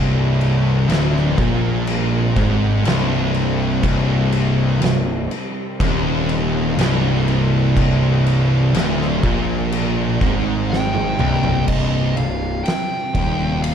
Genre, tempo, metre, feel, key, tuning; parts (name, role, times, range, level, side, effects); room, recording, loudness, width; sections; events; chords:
stoner and doom metal; 61 BPM; 4/4; straight; C minor; A4 = 439 Hz
string machine, cellos; sustained chords; 0.0-13.7 s; C3 to C4; -31 LUFS; equal
heavy high-gain guitar; riff; 0.0-11.7 s; C2 to Bb2; -24 LUFS; equal; distortion
thick fuzz guitar; riff; 0.0-13.7 s; C2 to Bb2; -21 LUFS; left 6 dB; distortion
thick fuzz guitar; riff; 0.0-13.7 s; C2 to Bb2; -22 LUFS; right 7 dB; distortion
fuzz picked electric bass; bass; 0.0-13.7 s; C1 to Bb1; -23 LUFS; equal; overdrive
oversized low-tuned drum kit; drums; 0.4-13.7 s; crash cymbal, kick drum, ride cymbal, snare drum, toms; -23 LUFS; equal
fuzz lead guitar; melody; 10.7-13.7 s; Eb5 to G5; -25 LUFS; right 1 dB; distortion, tape echo
little or no reverb; dark, warm production; -16 LUFS; side -8 dB against mid
0.0-11.7 A section; 11.7-13.7 B section
drum fill 10.7-11.7
0.0 Cm